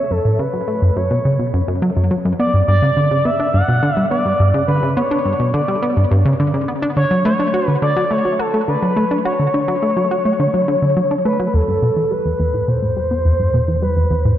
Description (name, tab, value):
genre	ambient, sequencer-driven space music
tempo	105 BPM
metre	4/4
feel	straight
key	unclear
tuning	A4 = 440 Hz
part	expressive synth lead	melody	0.0-14.4 s	A4 to F#5	-19 LUFS	equal	chorus, tape echo
part	plucky analog bass	riff	0.0-14.3 s	E2 to F#4	-16 LUFS	equal	tape echo
part	warm sub bass	bass	11.5-14.4 s	E2	-21 LUFS	equal	none
room	wet lush hall reverb, RT60 2.6 s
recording	dreamy mix soaked in reverb, cassette tape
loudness	-14 LUFS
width	side -11 dB against mid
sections	0.0-11.5 A section; 11.5-14.4 B section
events	none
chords	0.0 F#m; 2.4 G; 7.0 Dmaj7; 11.5 Em